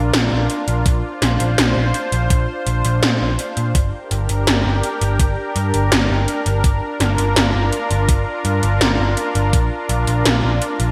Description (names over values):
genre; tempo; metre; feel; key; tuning
synthwave; 83 BPM; 4/4; straight; G minor; A4 = 440 Hz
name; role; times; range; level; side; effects
lush unison pad; sustained chords; 0.0-10.9 s; D4 to C5; -24 LUFS; equal; chorus, sidechain pumping
picked electric bass; bass; 0.0-10.9 s; G1 to Bb2; -21 LUFS; equal; sidechain pumping
80s electronic pad drums; drums; 0.1-10.9 s; hi-hat, snare drum; -22 LUFS; equal; gated reverb
electronic kick drum; drums; 0.9-9.7 s; none; -19 LUFS; equal; none
room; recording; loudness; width
moderate lush hall reverb, RT60 1.8 s, digital ambience; bright 1980s-style digital production; -18 LUFS; mono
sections
0.0-10.9 A section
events
none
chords
0.0 Bb; 3.8 Gm; 9.5 Bb